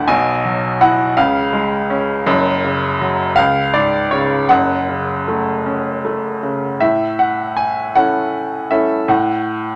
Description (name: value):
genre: classical, lyrical solo piano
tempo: 53 BPM (dotted quarters)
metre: 6/8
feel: rubato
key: F# minor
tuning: A4 = 440 Hz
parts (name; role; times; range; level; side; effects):
- bright upright piano; solo; 0.0-9.8 s; F#1 to G#5; -17 LUFS; equal; none
room: moderate studio reverb, RT60 0.8 s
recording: none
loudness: -17 LUFS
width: mono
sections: 0.0-6.8 A section; 6.8-9.8 B section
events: none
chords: 0.1 Bsus4; 1.2 C#; 2.3 F#5; 3.4 C#5; 4.5 F#m; 6.8 A; 9.1 F#m/A